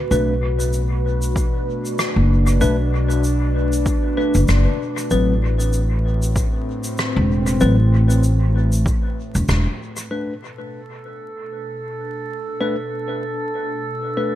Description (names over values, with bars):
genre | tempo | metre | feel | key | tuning
ambient dub | 96 BPM | 4/4 | swing 57% on 16ths | unclear | A4 = 440 Hz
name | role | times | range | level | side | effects
warbly tape-like pad | sustained chords | 0.0-14.4 s | A2 to B4 | -25 LUFS | left 1 dB | chorus, built-in reverb
bell-like tine electric piano | stabs | 0.1-14.4 s | F#3 to B4 | -24 LUFS | left 2 dB | wide subtle chorus, dub echo
upright bass | bass | 0.1-9.6 s | E1 to B1 | -17 LUFS | equal | none
shaker and rim click | drums | 0.1-10.1 s | none | -29 LUFS | left 1 dB | dub echo
electronic kick drum | drums | 1.4-9.0 s | none | -21 LUFS | equal | none
drifting glass-harmonics texture | texture | 10.7-14.4 s | A4 | -27 LUFS | right 3 dB | chorus, built-in reverb
room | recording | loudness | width
little or no reverb | vinyl crackle | -17 LUFS | side -13 dB against mid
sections
0.0-10.1 A section; 10.1-14.4 B section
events
band accent 9.5-9.8; filter sweep on ambient pad 10.1-14.4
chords
0.1 Bm7; 5.1 Am69; 10.1 Bm7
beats
| 0.11 0.74 1.36 1.99 | 2.61 3.24 3.86 4.49 | 5.11 5.74 6.36 6.99 | 7.61 8.24 8.86 9.49 | 10.11 10.74 11.36 11.99 | 12.61 13.24 13.86